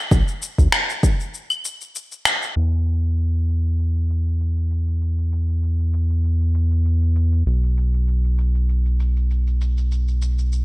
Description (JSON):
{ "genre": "organic downtempo", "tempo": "98 BPM", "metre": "4/4", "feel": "swing 54% on 16ths", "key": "unclear", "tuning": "A4 = 439 Hz", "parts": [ { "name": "round analog bass", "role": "bass", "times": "0.1-10.6 s", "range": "B1 to E2", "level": "-18 LUFS", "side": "equal", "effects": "none" }, { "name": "electronic kick drum", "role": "drums", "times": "0.1-1.2 s", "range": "none", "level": "-17 LUFS", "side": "equal", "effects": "studio reverb" }, { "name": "electronic shaker, finger snaps and claves", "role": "drums", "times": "0.1-10.6 s", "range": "none", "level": "-22 LUFS", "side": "left 1 dB", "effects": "studio reverb, gated reverb" } ], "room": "digital ambience", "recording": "bright 1980s-style digital production, low-pass filter", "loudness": "-18 LUFS", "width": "side -20 dB against mid", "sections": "0.0-2.6 A section; 2.6-10.6 B section", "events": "break 1.3-2.6", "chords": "none", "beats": "| 0.11 0.73 1.34 1.95 | 2.56 3.17 3.79 4.40 | 5.01 5.62 6.24 6.85 | 7.46 8.07 8.69 9.30 | 9.91 10.52" }